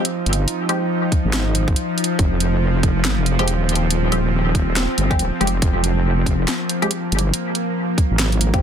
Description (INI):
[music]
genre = deep dubstep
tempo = 140 BPM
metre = 4/4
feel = swing 61% on 16ths, half-time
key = F minor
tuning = A4 = 440 Hz
[part]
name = bowed-like drone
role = sustained chords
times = 0.0-8.6 s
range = F3 to Eb4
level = -22 LUFS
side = equal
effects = built-in reverb
[part]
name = filtered dub chord stab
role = stabs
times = 0.0-0.8, 3.4-8.6 s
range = F3 to G4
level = -25 LUFS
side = left 2 dB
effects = phaser, wide subtle chorus, dub echo
[part]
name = garage drum kit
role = drums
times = 0.0-8.6 s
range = handclaps, hi-hat, snare drum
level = -23 LUFS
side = right 1 dB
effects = overdrive, small room ambience
[part]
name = wobble bass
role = bass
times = 0.3-8.6 s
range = Eb1 to Ab1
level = -19 LUFS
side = equal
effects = chorus
[part]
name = electronic kick drum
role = drums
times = 1.1-8.6 s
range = none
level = -18 LUFS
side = equal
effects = overdrive, small room ambience
[sound]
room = light reverb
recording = dense, heavily limited modern master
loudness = -17 LUFS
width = side -8 dB against mid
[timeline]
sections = 0.0-8.6 A section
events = none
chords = 0.0 Fmadd9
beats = 0.05 | 0.48 0.91 1.33 1.76 | 2.19 2.62 3.05 3.48 | 3.91 4.33 4.76 5.19 | 5.62 6.05 6.48 6.91 | 7.33 7.76 8.19 8.62